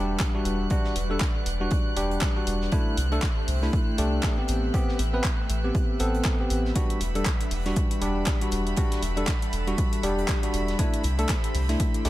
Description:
deep house; 119 BPM; 4/4; swing 58% on 16ths; E minor; A4 = 440 Hz
airy breathy pad; sustained chords; 0.0-12.1 s; G3 to F#5; -36 LUFS; equal; chorus, vintage 12-bit sampler grit, sidechain pumping
bell-like tine electric piano; stabs; 0.0-12.1 s; G3 to B4; -29 LUFS; equal; sidechain pumping, analog delay
round analog bass; bass; 0.0-12.1 s; E1 to C2; -27 LUFS; equal; sidechain pumping
rich studio violin section; texture; 0.0-12.1 s; B5 to F#6; -38 LUFS; right 2 dB
big rock drum kit; drums; 0.2-12.1 s; hi-hat, snare drum; -43 LUFS; right 3 dB
deep house drum kit; drums; 0.2-12.1 s; handclaps, hi-hat; -33 LUFS; equal
electronic kick drum; drums; 0.2-11.9 s; -26 LUFS; equal
light reverb, studio reverb; echo-heavy mix; -23 LUFS; side -15 dB against mid
0.0-12.1 A section
0.0 Em9; 2.7 C69; 4.5 Am9; 6.8 Em9; 10.8 C69

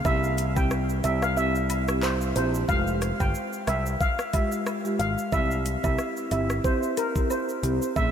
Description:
dancehall; 91 BPM; 4/4; swing 56% on 16ths; F harmonic minor; A4 = 439 Hz
marimba with soft mallets; accompaniment; 0.0-8.1 s; Ab3 to Ab4; -29 LUFS; right 1 dB
steel pan; melody; 0.1-8.1 s; Bb4 to G5; -28 LUFS; right 1 dB; diffuse ambient delay
overdriven picked electric bass; bass; 0.1-8.1 s; F1 to C2; -28 LUFS; equal
afro-pop drum kit; drums; 0.1-8.1 s; handclaps, hi-hat, kick drum, rim click, shaker; -30 LUFS; equal
woodblock and cabasa; percussion; 0.1-8.1 s; -43 LUFS; left 4 dB
moderate huge ambient reverb, RT60 5.0 s; dreamy mix soaked in reverb; -23 LUFS; side -8 dB against mid
0.0-2.7 A section; 2.7-8.1 B section
kick muted 1.4-2.7
0.1 C; 2.7 Fmadd9; 5.3 C

